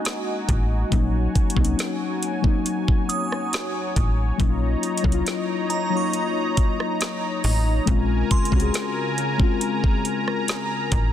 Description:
contemporary R&B; 69 BPM; 4/4; straight; Bb minor; A4 = 440 Hz
muted felt-like synth keys; accompaniment; 0.0-11.1 s; Gb3 to Ab4; -26 LUFS; left 7 dB; chorus
warm analog pad; sustained chords; 0.0-11.1 s; Db3 to Bb5; -28 LUFS; right 2 dB; chorus, sidechain pumping
glassy synth bell; texture; 0.0-11.1 s; Bb5 to Gb6; -33 LUFS; right 4 dB; chorus, ping-pong delay
smooth R&B drum kit; drums; 0.1-11.1 s; hi-hat, kick drum, rim click, snare drum; -23 LUFS; equal
slap-like FM bass; bass; 0.5-11.1 s; A1 to C2; -22 LUFS; equal
little or no reverb; dense, heavily limited modern master; -20 LUFS; side -11 dB against mid
0.0-11.1 A section
0.0 Gb69; 0.9 Ab9sus4/Bb; 4.4 Ebm7/Bb; 7.9 Bbm9

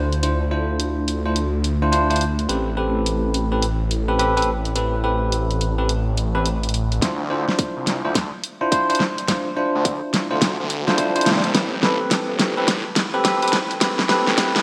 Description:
glitch hop; 106 BPM; 4/4; swing 63% on 16ths; D dorian; A4 = 439 Hz
phased detuned saw bass; bass; 0.0-14.6 s; G1 to G2; -25 LUFS; equal; phaser, tube saturation, high-pass filter
pop drum kit; drums; 0.1-14.6 s; hi-hat, snare drum; -24 LUFS; equal; studio reverb, gated reverb
bell-like tine electric piano; stabs; 0.2-14.6 s; C4 to C5; -24 LUFS; equal; lush chorus, sidechain pumping, low-pass filter, digital delay
electronic kick drum; drums; 7.0-14.5 s; -27 LUFS; equal; high-pass filter on kick, studio reverb
wet lush hall reverb, RT60 1.8 s; bright 1980s-style digital production, high-pass filter; -21 LUFS; mono
0.0-7.0 A section; 7.0-14.6 B section
build-up 7.0-14.6; drum fill 7.0-14.6
0.0 Dm9; 2.5 Am9; 7.0 Dm9; 11.6 Am9

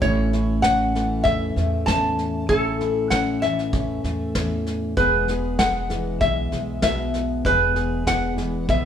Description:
acoustic folk duo or small band; 97 BPM; 4/4; straight; A4 = 441 Hz
metal-body resonator slide guitar; melody; 0.0-8.9 s; A4 to A5; -22 LUFS; equal
fingerpicked plugged-in steel-string acoustic guitar; accompaniment; 0.0-8.9 s; E2 to G#4; -25 LUFS; left 1 dB
upright bass; bass; 0.0-8.9 s; E1 to E2; -28 LUFS; right 1 dB
soft brush drum kit; drums; 0.0-8.8 s; kick drum, snare drum; -26 LUFS; equal
moderate studio reverb, RT60 0.9 s; band playing live in one room; -19 LUFS; side -9 dB against mid
0.0-8.9 A section
0.0 A; 5.0 E

